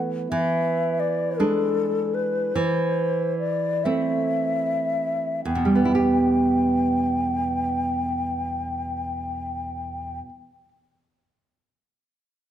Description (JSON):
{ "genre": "romantic duo for flute and classical guitar", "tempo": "34-60 BPM (dotted quarters)", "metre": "6/8", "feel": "rubato", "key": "E minor", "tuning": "A4 = 443 Hz", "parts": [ { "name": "nylon-string guitar", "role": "accompaniment", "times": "0.0-10.7 s", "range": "E2 to G4", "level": "-23 LUFS", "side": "right 3 dB", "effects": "none" }, { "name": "mellow hollow concert flute", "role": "melody", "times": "0.3-10.2 s", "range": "A4 to G5", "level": "-26 LUFS", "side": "left 4 dB", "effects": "none" } ], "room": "moderate recital hall reverb, RT60 1.4 s", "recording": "none", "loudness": "-21 LUFS", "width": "side -10 dB against mid", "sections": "0.0-5.5 A section; 5.5-11.8 B section", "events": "slowing down 0.0-5.5", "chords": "0.3 E7; 2.5 Am/E; 5.5 Em" }